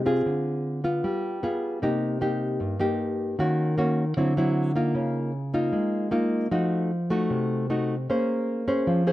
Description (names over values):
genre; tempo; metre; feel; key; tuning
bossa nova; 153 BPM; 4/4; straight; F minor; A4 = 439 Hz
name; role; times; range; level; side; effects
nylon-string guitar; solo; 0.0-9.1 s; G2 to C5; -23 LUFS; equal; none
room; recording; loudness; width
little or no reverb; dry, close 1970s-style studio recording; -23 LUFS; side -15 dB against mid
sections
0.0-9.1 A section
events
none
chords
0.2 Dm7b5; 1.0 G7b9; 1.8 Cm7; 3.4 Ebm7; 4.2 D9; 4.9 Db69; 6.5 F7b9; 8.1 Bbm9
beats
| 0.25 0.64 1.03 1.42 | 1.81 2.21 2.60 2.99 | 3.38 3.77 4.16 4.55 | 4.95 5.34 5.73 6.12 | 6.51 6.91 7.30 7.69 | 8.08 8.48 8.87